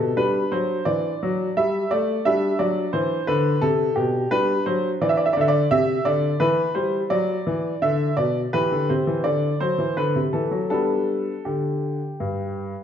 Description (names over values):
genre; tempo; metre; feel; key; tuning
classical-period piano sonatina; 85 BPM; 3/4; uneven beats, rubato; G major; A4 = 440 Hz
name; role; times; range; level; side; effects
clear grand piano; solo; 0.0-12.7 s; G2 to E5; -20 LUFS; equal; none
room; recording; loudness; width
wet recital hall reverb, RT60 1.4 s; minimal, uncompressed stereo recording; -20 LUFS; side -8 dB against mid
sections
0.0-12.8 A section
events
none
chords
0.2 G5; 2.3 G; 4.3 G5; 5.7 Cadd9; 6.4 Em; 7.8 Bmadd11; 8.5 C; 9.2 D9; 10.0 D7; 10.7 G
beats
| 0.17 0.87 1.56 | 2.26 2.94 3.63 | 4.32 5.01 5.71 | 6.41 7.11 7.82 | 8.53 9.24 9.97 | 10.72 11.47 12.21